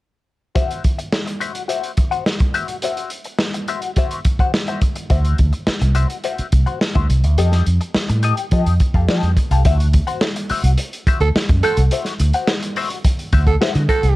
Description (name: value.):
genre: funk.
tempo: 106 BPM.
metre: 4/4.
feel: straight.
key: D mixolydian.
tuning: A4 = 440 Hz.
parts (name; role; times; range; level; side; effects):
semi-hollow electric guitar; accompaniment; 0.6-14.1 s; F#4 to F#5; -23 LUFS; left 6 dB; wah, phaser.
crunchy breakbeat drum kit; drums; 0.6-14.2 s; hi-hat, kick drum, snare drum; -19 LUFS; equal; none.
fingered electric bass with an envelope filter; bass; 5.1-14.1 s; C2 to F3; -15 LUFS; equal; none.
growling tenor saxophone; second line; 11.2-14.2 s; A4; -20 LUFS; right 5 dB; none.
room: studio ambience.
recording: dark, warm production.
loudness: -16 LUFS.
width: side -18 dB against mid.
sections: 0.6-9.6 A section; 9.6-14.2 B section.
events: none.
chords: 0.6 D9 (rootless); 7.4 F9; 9.6 D9.